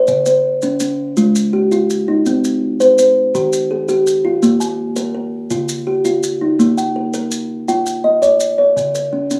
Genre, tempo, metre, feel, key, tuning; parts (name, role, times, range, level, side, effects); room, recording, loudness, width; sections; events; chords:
southern african traditional, mbira-style interlocking cycle; 110 BPM (dotted quarters); 12/8; straight; Bb equiheptatonic; A4 = 440 Hz
kalimba; arpeggios; 0.0-9.4 s; Db3+43c to Ab5+29c; -16 LUFS; equal
maracas; percussion; 0.1-9.4 s; -30 LUFS; equal
light reverb; small room reverb; -16 LUFS; mono
0.0-6.6 A section; 6.6-9.4 A section
0.1 Db; 2.3 Cm; 3.3 Eb; 4.4 Bb5; 5.5 Db; 6.6 Bbm; 8.8 N.C.